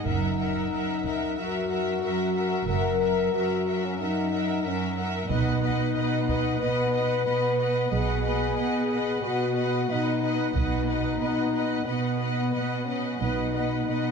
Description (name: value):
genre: cinematic, epic orchestral film score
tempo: 92 BPM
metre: 4/4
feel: straight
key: unclear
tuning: A4 = 439 Hz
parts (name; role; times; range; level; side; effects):
- dark symphonic violin section; melody; 0.0-14.1 s; F#5; -37 LUFS; left 1 dB; none
- warm symphonic violin section; second line; 0.0-14.1 s; D#5 to E5; -34 LUFS; left 2 dB; none
- warm symphonic viola section; accompaniment; 0.0-14.1 s; A#4 to B4; -33 LUFS; right 3 dB; none
- clear French horn section; sustained chords; 0.0-14.1 s; B3 to B4; -28 LUFS; left 5 dB; none
- rich studio double bass section; bass; 0.1-13.8 s; F#1 to B1; -32 LUFS; right 6 dB; none
- warm symphonic cello section; bass; 0.1-14.1 s; F#2 to B2; -30 LUFS; right 4 dB; none
- taiko ensemble; drums; 0.1-1.3, 5.3-6.6, 10.6-11.8 s; none; -35 LUFS; equal; none
room: moderate concert hall reverb, RT60 2.1 s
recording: none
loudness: -24 LUFS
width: side -5 dB against mid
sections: 0.0-14.1 A section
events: none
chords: 0.1 F#7; 5.3 B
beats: | 0.07 0.72 1.38 2.03 | 2.68 3.33 3.99 4.64 | 5.29 5.95 6.61 7.27 | 7.92 8.58 9.23 9.89 | 10.54 11.20 11.86 12.53 | 13.20 13.87